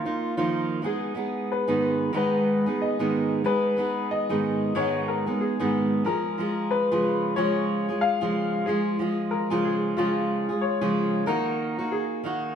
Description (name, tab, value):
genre	pop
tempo	92 BPM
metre	4/4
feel	swing 60% on 16ths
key	unclear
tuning	A4 = 438 Hz
part	warm upright piano	melody	0.0-12.6 s	E#4 to E#5	-28 LUFS	left 3 dB	none
part	fingerpicked steel-string acoustic guitar	accompaniment	0.0-12.6 s	G#2 to G#4	-25 LUFS	right 1 dB	none
room	wet stone room reverb, RT60 1.2 s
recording	band playing live in one room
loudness	-23 LUFS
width	side -8 dB against mid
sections	0.0-11.3 A section; 11.3-12.6 B section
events	none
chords	0.0 D#sus2; 0.8 G#m; 6.1 C#; 11.3 D#m